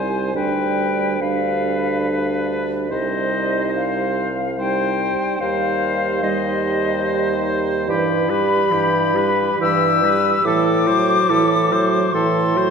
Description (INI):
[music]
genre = classical, slow romantic movement for wind quintet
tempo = 71 BPM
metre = 3/4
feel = rubato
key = C minor, E minor from 7.9 s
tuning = A4 = 442 Hz
[part]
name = bright silver concert flute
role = melody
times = 0.0-12.7 s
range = Eb5 to E6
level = -22 LUFS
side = left 5 dB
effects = none
[part]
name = clear oboe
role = second line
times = 0.0-12.7 s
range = G4 to C5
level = -25 LUFS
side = left 2 dB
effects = none
[part]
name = bright clarinet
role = accompaniment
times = 0.0-12.7 s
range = D4 to G4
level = -26 LUFS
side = right 5 dB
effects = none
[part]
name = clear French horn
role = accompaniment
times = 0.0-12.7 s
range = E3 to G3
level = -24 LUFS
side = right 3 dB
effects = none
[part]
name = warm bassoon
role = bass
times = 0.0-12.7 s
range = C2 to A2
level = -22 LUFS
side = right 1 dB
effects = none
[sound]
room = wet scoring stage reverb, RT60 1.9 s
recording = heard from further back in the room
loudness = -16 LUFS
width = side -6 dB against mid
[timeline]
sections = 0.0-12.7 A section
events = none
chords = 0.3 G7/D; 2.9 Cm; 5.4 Cm/Eb; 7.9 Em/G; 10.5 F#m7b5/A